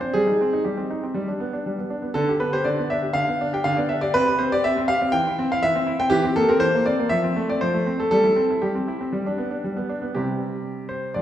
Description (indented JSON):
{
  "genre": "classical-period piano sonatina",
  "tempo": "120 BPM",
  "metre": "4/4",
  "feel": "straight",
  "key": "C major",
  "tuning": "A4 = 441 Hz",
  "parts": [
    { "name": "clear concert grand piano", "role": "solo", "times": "0.0-11.2 s", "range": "F2 to G5", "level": "-20 LUFS", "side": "equal", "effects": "none" }
  ],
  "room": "wet recital hall reverb, RT60 1.8 s",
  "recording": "heard from further back in the room",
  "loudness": "-20 LUFS",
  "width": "side -11 dB against mid",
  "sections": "0.0-10.2 A section; 10.2-11.2 B section",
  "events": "none",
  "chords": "0.2 Cm/G; 1.2 G; 2.2 G/D; 4.2 C5; 5.1 C/E; 6.1 C7/E; 7.1 F; 8.1 C/G; 9.1 G; 10.2 C"
}